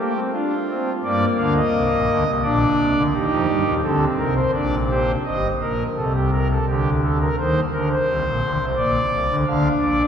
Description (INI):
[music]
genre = classical, baroque-style 3-part fugue for pipe organ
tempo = 86 BPM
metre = 3/4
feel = straight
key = G minor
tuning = A4 = 440 Hz
[part]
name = pipe organ, foundations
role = solo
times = 0.0-10.1 s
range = G1 to F5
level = -18 LUFS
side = equal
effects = none
[sound]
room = wet cathedral reverb, RT60 5.4 s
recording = recorded in a church or concert hall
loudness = -18 LUFS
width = side -8 dB against mid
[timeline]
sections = 0.0-5.3 A section; 5.3-10.1 B section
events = none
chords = 0.3 Dm; 1.0 Gm; 2.4 Bbadd9; 3.1 Cm/Eb; 4.5 Gm/Bb; 5.3 Eb/G; 6.7 D5; 7.4 Cm; 8.8 Bb